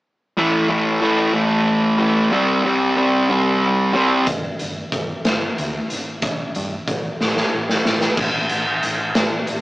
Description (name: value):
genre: quiet-loud alternative rock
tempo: 62 BPM (dotted quarters)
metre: 6/8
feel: straight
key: A minor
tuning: A4 = 440 Hz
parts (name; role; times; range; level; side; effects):
- fuzz guitar; riff; 0.4-4.3 s; A2 to C4; -15 LUFS; equal; distortion
- hollow-body short-scale picked electric bass; bass; 4.3-9.6 s; G1 to G2; -32 LUFS; equal; none
- raw garage drum kit; drums; 4.3-9.6 s; crash cymbal, hi-hat, kick drum, snare drum; -19 LUFS; equal; none
room: moderate studio reverb, RT60 0.5 s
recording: rough rehearsal-room recording, tube saturation, small speaker sound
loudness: -17 LUFS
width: side -18 dB against mid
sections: 0.4-8.2 A section; 8.2-9.6 B section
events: drum fill 7.2-8.2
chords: 0.4 A5; 2.3 C5; 4.3 G5; 6.2 N.C.